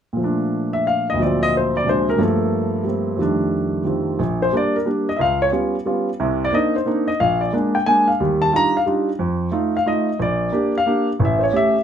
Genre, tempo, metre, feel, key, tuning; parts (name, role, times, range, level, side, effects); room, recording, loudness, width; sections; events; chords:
jazz; 180 BPM; 3/4; swing 62% on 8ths; Bb major; A4 = 440 Hz
warm grand piano; solo; 0.1-11.8 s; A1 to Bb5; -17 LUFS; equal
wet club reverb, RT60 0.6 s; -17 LUFS; side -8 dB against mid
0.2-4.2 A section; 4.2-11.8 B section
0.2 Bbmaj7; 1.2 D7alt; 2.2 Gm9; 3.2 F13; 4.2 Bb6; 5.2 Db7#11; 6.2 Cm9; 7.2 Bb7; 8.2 Ebmaj9; 9.2 F7; 10.2 Bb6; 11.2 A7